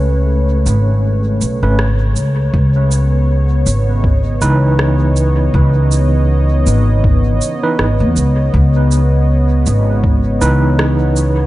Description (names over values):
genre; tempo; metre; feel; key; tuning
ambient dub; 80 BPM; 4/4; swing 57% on 16ths; C# minor; A4 = 436 Hz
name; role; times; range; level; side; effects
warm analog pad; sustained chords; 0.0-11.5 s; C#3 to D#5; -20 LUFS; equal; chorus
overdriven tine electric piano; stabs; 0.0-11.5 s; E3 to B4; -21 LUFS; right 3 dB; fast tremolo, dub echo
upright bass; bass; 0.0-11.5 s; G#1 to E2; -12 LUFS; equal; none
electronic cabasa and rim click; drums; 0.7-11.3 s; none; -24 LUFS; right 1 dB; dub echo
electronic kick drum; drums; 2.5-10.2 s; none; -14 LUFS; equal; none
room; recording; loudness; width
digital ambience; nothing above 10.6 kHz; -11 LUFS; side -16 dB against mid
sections
0.0-2.5 A section; 2.5-11.5 B section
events
kick drops out 1.0-2.5; band accent 1.8-2.2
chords
0.0 Aadd9; 2.5 C#m9